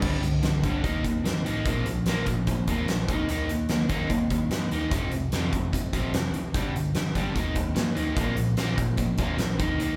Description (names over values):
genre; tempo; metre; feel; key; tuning
hard rock; 148 BPM; 4/4; straight; unclear; A4 = 440 Hz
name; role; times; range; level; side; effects
overdriven electric guitar; riff; 0.0-10.0 s; F2 to Eb4; -30 LUFS; equal; none
overdriven picked electric bass; bass; 0.0-10.0 s; F1 to G2; -35 LUFS; equal; none
huge arena drum kit; drums; 0.0-9.9 s; crash cymbal, hi-hat, kick drum, snare drum; -30 LUFS; equal; none
room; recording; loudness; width
moderate large studio reverb, RT60 1.0 s; band playing live in one room; -26 LUFS; mono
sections
0.0-10.0 A section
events
none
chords
0.0 G5; 0.8 Eb; 1.7 Bb5; 3.1 Eb5; 4.9 F5; 6.5 G5; 7.4 Eb; 8.2 Bb5